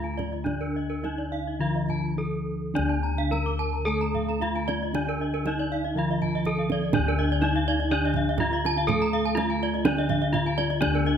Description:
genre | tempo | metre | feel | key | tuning
Balinese gamelan | 105-124 BPM | 4/4 | straight | D pelog | A4 = 439 Hz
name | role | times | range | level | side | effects
gamelan-type bronze metallophone | melody | 0.0-11.2 s | D4 to Bb4-20c | -28 LUFS | right 1 dB | none
gamelan-type bronze metallophone | accompaniment | 0.0-11.2 s | D3 to A3-30c | -31 LUFS | equal | none
gamelan-type bronze metallophone | arpeggios | 0.0-11.2 s | D5 to D6 | -33 LUFS | left 3 dB | none
gamelan-type bossed gongs | bass | 0.0-11.2 s | D2 to A4-30c | -29 LUFS | left 3 dB | none
kendang | percussion | 0.0-10.9 s | none | -32 LUFS | right 6 dB | none
gamelan-type bronze metallophone | arpeggios | 0.2-11.1 s | Bb4-20c to Bb5-20c | -33 LUFS | right 4 dB | none
room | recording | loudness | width
moderate recital hall reverb, RT60 1.3 s | none | -23 LUFS | side -8 dB against mid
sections
0.0-6.9 A section; 6.9-11.2 B section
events
none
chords
none

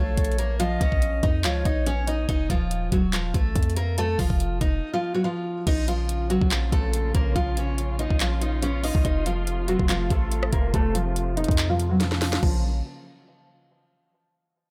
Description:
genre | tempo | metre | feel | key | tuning
hip hop, trap | 142 BPM | 4/4 | half-time | Bb harmonic minor | A4 = 440 Hz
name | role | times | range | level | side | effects
picked steel-string acoustic guitar | melody | 0.0-12.6 s | F3 to Eb5 | -29 LUFS | equal | low-pass filter, delay
reedy concert flute | second line | 0.0-2.2 s | Db5 to Eb5 | -34 LUFS | equal | delay
warm 808-style bass | bass | 0.0-12.8 s | Eb1 to F2 | -28 LUFS | equal | none
trap drum kit | drums | 0.2-12.5 s | crash cymbal, handclaps, hi-hat, kick drum, rim click, snare drum | -27 LUFS | equal | none
dark symphonic string section | sustained chords | 5.7-12.6 s | Bb2 to F4 | -37 LUFS | equal | low-pass filter
room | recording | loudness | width
little or no reverb | none | -24 LUFS | mono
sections
0.0-5.7 A section; 5.7-12.4 B section; 12.4-14.1 C section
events
break 4.8-5.7; filter sweep 5.7-12.4; drum fill 12.0-12.4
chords
0.0 Bbm; 2.3 F; 5.7 Bbm; 9.0 F; 12.4 Bbm

